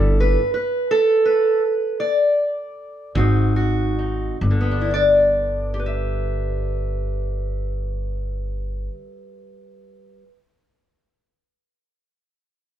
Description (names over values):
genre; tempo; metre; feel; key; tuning
acoustic country blues, solo or duo; 45-58 BPM (dotted quarters); 12/8; straight; unclear; A4 = 440 Hz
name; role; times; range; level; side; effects
fingerpicked steel-string acoustic guitar; melody; 0.0-10.4 s; G2 to E5; -20 LUFS; equal; none
upright bass; bass; 0.0-8.9 s; G1 to Ab1; -22 LUFS; equal; none
kick drum; drums; 3.2-3.3 s; none; -28 LUFS; right 1 dB; none
room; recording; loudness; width
moderate studio reverb, RT60 0.5 s; heard from further back in the room; -18 LUFS; side -11 dB against mid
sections
0.0-4.4 A section; 4.4-9.7 B section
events
slowing down 0.0-4.4; stop 0.0-3.1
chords
0.0 Gadd9; 3.1 Ab7; 4.4 G6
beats
0.89 1.98 3.15 | 4.42 5.75 7.08 8.41